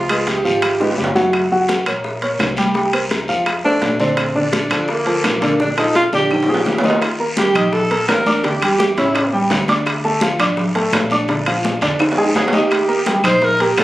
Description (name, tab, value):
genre	Afro-Cuban jazz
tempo	169 BPM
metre	4/4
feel	straight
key	Bb major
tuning	A4 = 441 Hz
part	clear alto saxophone	melody	0.0-1.2, 3.6-9.3, 12.4-13.8 s	Bb3 to C5	-18 LUFS	right 1 dB	none
part	warm baby grand piano	accompaniment	0.0-13.8 s	C#3 to Eb6	-18 LUFS	equal	none
part	upright bass	bass	0.0-13.8 s	Gb1 to F2	-29 LUFS	equal	none
part	bongos	percussion	0.1-13.8 s	none	-26 LUFS	left 2 dB	none
part	claves	percussion	0.1-13.8 s	none	-26 LUFS	left 2 dB	none
part	congas	percussion	0.1-13.8 s	none	-24 LUFS	left 1 dB	none
part	timbales	percussion	0.1-13.8 s	none	-22 LUFS	right 2 dB	none
part	guiro	percussion	0.3-13.8 s	none	-26 LUFS	left 1 dB	none
room	wet studio reverb, RT60 0.6 s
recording	recorded on a phone in the room, club reverb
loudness	-14 LUFS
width	side -16 dB against mid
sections	0.0-7.0 A section; 7.0-13.8 B section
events	drum fill 0.8-1.3, 5.6-7.0, 12.0-12.7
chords	0.0 Db7; 1.3 Gb; 2.8 C5; 3.5 F; 4.2 Bbmaj7; 6.3 Bb6; 7.0 Ebmaj7; 8.4 A7; 9.9 Dm; 11.3 Bb7; 12.7 Eb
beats	0.27 0.63 0.98 | 1.34 1.69 2.05 2.40 | 2.76 3.11 3.47 3.82 | 4.18 4.53 4.89 5.24 | 5.60 5.95 6.31 6.67 | 7.02 7.38 7.73 8.09 | 8.44 8.80 9.15 9.51 | 9.86 10.22 10.57 10.93 | 11.29 11.64 12.00 12.35 | 12.71 13.06 13.42 13.77